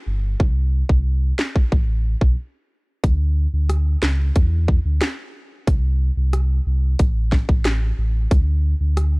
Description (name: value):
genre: dancehall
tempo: 91 BPM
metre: 4/4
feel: straight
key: unclear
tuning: A4 = 440 Hz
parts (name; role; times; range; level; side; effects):
- sub bass with octave; bass; 0.1-9.2 s; G1 to E2; -18 LUFS; equal; none
- island pop drum kit; drums; 0.4-9.1 s; handclaps, hi-hat, kick drum, rim click, snare drum; -18 LUFS; equal; none
room: little or no reverb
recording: dry, gritty hardware recording, transformer saturation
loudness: -17 LUFS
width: side -31 dB against mid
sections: 0.0-3.0 A section; 3.0-9.2 B section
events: break 2.4-3.0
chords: none